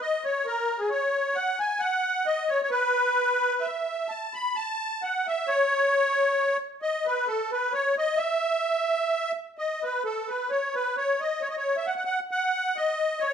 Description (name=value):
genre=musette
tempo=132 BPM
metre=3/4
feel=rubato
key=unclear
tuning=A4 = 440 Hz
part: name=musette accordion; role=solo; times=0.0-13.3 s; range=G#4 to B5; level=-24 LUFS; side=equal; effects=none
room=moderate large studio reverb, RT60 0.8 s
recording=band playing live in one room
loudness=-24 LUFS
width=side -8 dB against mid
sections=0.0-9.6 A section; 9.6-13.3 A section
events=none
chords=none